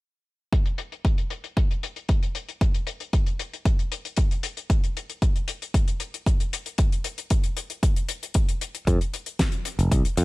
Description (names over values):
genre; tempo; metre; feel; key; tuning
nu-disco, nu disco; 115 BPM; 4/4; straight; unclear; A4 = 440 Hz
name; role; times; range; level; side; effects
damped 70s drum kit; drums; 0.5-10.2 s; hi-hat, snare drum; -31 LUFS; left 4 dB; low-pass filter on hats, studio reverb, low-pass filter on snare, low-pass filter on room
electronic kick drum; drums; 0.5-10.0 s; none; -22 LUFS; equal; studio reverb
modern bright fingered electric bass; bass; 8.9-10.2 s; F1 to F2; -21 LUFS; equal; tube saturation
room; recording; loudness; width
little or no reverb; none; -23 LUFS; side -22 dB against mid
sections
0.5-10.2 A section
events
none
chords
none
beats
| 0.52 1.05 1.57 2.09 | 2.61 3.13 3.65 4.18 | 4.70 5.22 5.74 6.26 | 6.79 7.31 7.83 8.35 | 8.87 9.39 9.91